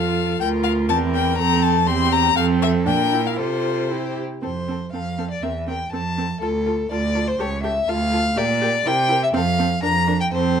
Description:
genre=quick classical-period movement for string quartet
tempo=122 BPM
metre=2/4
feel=rubato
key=F major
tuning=A4 = 440 Hz
part: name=clear violin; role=melody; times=0.0-10.6 s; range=A4 to C6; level=-24 LUFS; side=left 10 dB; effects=none
part: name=rich violin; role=second line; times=0.0-10.6 s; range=G4 to Bb5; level=-24 LUFS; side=left 3 dB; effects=none
part: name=clear viola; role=accompaniment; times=0.0-10.6 s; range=C4 to G4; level=-25 LUFS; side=right 5 dB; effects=none
part: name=clear cello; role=bass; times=0.0-10.6 s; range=C#2 to C3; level=-23 LUFS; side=right 4 dB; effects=none
room=light reverb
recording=dark, warm production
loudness=-18 LUFS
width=side -7 dB against mid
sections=0.0-4.4 A section; 4.4-10.6 B section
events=none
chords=0.4 Bb/D; 0.9 C7/E; 1.4 F; 1.9 C/E; 2.4 F; 2.9 Bb; 3.4 F/C; 3.9 C; 4.4 F; 5.4 C7/E; 5.9 F; 6.4 Dm; 7.4 A7/C#; 7.9 Dm; 8.4 Gm/Bb; 8.9 C; 9.3 F; 9.8 Bb/F

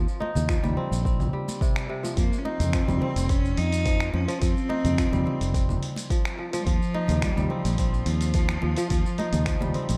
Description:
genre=organic downtempo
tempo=107 BPM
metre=4/4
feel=straight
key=unclear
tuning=A4 = 440 Hz
part: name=kora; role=arpeggios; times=0.0-10.0 s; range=C3 to Eb4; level=-34 LUFS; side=equal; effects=digital delay
part: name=fretless electric bass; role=bass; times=0.0-10.0 s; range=F1 to F2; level=-28 LUFS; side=equal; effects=tube saturation, sidechain pumping
part: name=dusty soul sampler-style drum kit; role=drums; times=0.1-10.0 s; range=congas, finger snaps, hi-hat, shaker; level=-34 LUFS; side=equal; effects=none
part: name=congas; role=percussion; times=0.2-10.0 s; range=none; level=-38 LUFS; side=equal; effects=none
part: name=electronic kick drum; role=drums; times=0.5-9.6 s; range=none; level=-28 LUFS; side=equal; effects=none
part: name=rich cello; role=melody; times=2.2-10.0 s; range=F3 to Eb4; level=-32 LUFS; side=equal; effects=digital delay
room=light reverb, small room reverb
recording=dark, warm production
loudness=-25 LUFS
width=mono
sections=0.0-10.0 A section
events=none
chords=0.0 Ebsus2; 2.2 Fsus2; 6.7 Ebsus2

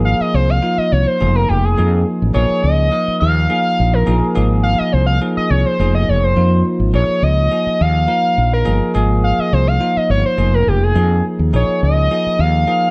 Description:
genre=electric jazz fusion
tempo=104 BPM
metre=4/4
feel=straight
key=Bb minor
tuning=A4 = 445 Hz
part: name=overdriven synth lead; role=melody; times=0.0-12.9 s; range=G4 to F5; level=-20 LUFS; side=equal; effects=distortion, chorus, plate reverb
part: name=bell-like tine electric piano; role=accompaniment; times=0.0-12.9 s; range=F3 to Bb4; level=-22 LUFS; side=equal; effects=lush chorus
part: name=fretless electric bass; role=bass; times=0.0-12.6 s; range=F1 to F2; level=-18 LUFS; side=equal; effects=none
room=moderate studio reverb, RT60 0.5 s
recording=none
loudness=-15 LUFS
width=mono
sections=0.0-12.9 A section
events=none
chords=0.0 Ab69; 1.2 Fm7; 2.3 Bbm7; 4.4 Ab69; 5.8 Fm7; 6.9 Bbm7; 8.9 Ab69; 10.4 Fm7; 11.5 Bbm7

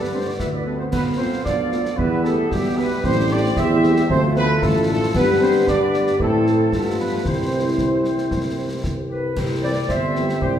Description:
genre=military-style march for wind band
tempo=114 BPM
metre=2/4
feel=straight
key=C major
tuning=A4 = 440 Hz
part: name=dark trumpet section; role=melody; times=0.0-10.2 s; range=E4 to E5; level=-27 LUFS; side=right 1 dB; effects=none
part: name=flute section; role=second line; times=0.0-10.6 s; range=G4 to E5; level=-28 LUFS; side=equal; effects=none
part: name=mellow euphonium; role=second line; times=0.0-10.6 s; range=G3 to E4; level=-27 LUFS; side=right 3 dB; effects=none
part: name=mellow woodwind section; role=second line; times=0.0-10.5 s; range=D4 to F5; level=-29 LUFS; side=left 2 dB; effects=none
part: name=warm trombone section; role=sustained chords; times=0.0-10.6 s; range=D3 to C4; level=-29 LUFS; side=right 1 dB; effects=none
part: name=mellow tuba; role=bass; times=0.0-10.6 s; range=G1 to A2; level=-22 LUFS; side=right 1 dB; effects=none
part: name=dark French horn section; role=accompaniment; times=0.1-10.3 s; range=E3 to G4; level=-24 LUFS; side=left 2 dB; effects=none
part: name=concert snare drum, concert bass drum and clash cymbals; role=drums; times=0.4-10.6 s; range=none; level=-27 LUFS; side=left 1 dB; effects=none
room=wet recital hall reverb, RT60 1.5 s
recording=heard from further back in the room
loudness=-17 LUFS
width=side -9 dB against mid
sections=0.0-9.4 A section; 9.4-10.6 A section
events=none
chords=0.0 G; 0.9 Bm7b5; 2.0 Em; 3.0 Am7; 4.1 Dm; 5.1 G; 6.2 Am; 6.7 G7; 7.3 C

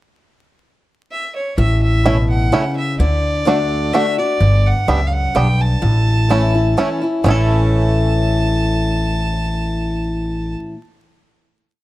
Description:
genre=bluegrass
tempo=127 BPM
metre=3/4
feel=straight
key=A mixolydian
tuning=A4 = 440 Hz
part: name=clear fiddle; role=melody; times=1.1-10.5 s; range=C#5 to A5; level=-24 LUFS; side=right 2 dB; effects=none
part: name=picked acoustic archtop guitar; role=accompaniment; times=1.6-10.8 s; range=F#2 to F#4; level=-20 LUFS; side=left 2 dB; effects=none
part: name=upright bass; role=bass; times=1.6-10.5 s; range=G1 to D2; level=-16 LUFS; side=equal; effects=none
part: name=bluegrass banjo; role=arpeggios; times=2.1-10.6 s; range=A3 to A4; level=-20 LUFS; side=right 3 dB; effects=none
room=light reverb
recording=dark, warm production, vinyl crackle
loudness=-14 LUFS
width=side -16 dB against mid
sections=0.2-1.6 pickup bar; 1.6-7.2 A section; 7.2-10.1 final chord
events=none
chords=0.2 N.C.; 1.6 A; 3.0 D; 4.4 G; 5.8 A

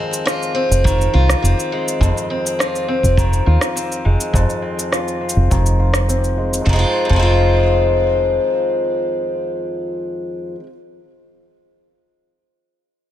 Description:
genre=folktronica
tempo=103 BPM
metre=4/4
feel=straight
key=F minor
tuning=A4 = 442 Hz
part: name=picked acoustic archtop guitar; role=arpeggios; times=0.0-10.7 s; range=F2 to F4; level=-18 LUFS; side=left 1 dB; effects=low-pass filter, digital delay
part: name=electronic shaker and rim click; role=drums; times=0.1-6.6 s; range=none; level=-23 LUFS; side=equal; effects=overdrive
part: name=deep dub fingered electric bass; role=bass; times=0.7-8.4 s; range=F1 to Eb2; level=-15 LUFS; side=equal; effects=none
part: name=kick drum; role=drums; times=0.8-7.3 s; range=none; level=-20 LUFS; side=equal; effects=none
room=small room ambience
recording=none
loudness=-15 LUFS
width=side -12 dB against mid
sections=0.0-6.7 A section; 6.7-9.0 B section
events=filter sweep on steel-string acoustic guitar 0.0-6.7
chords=0.0 Fm7

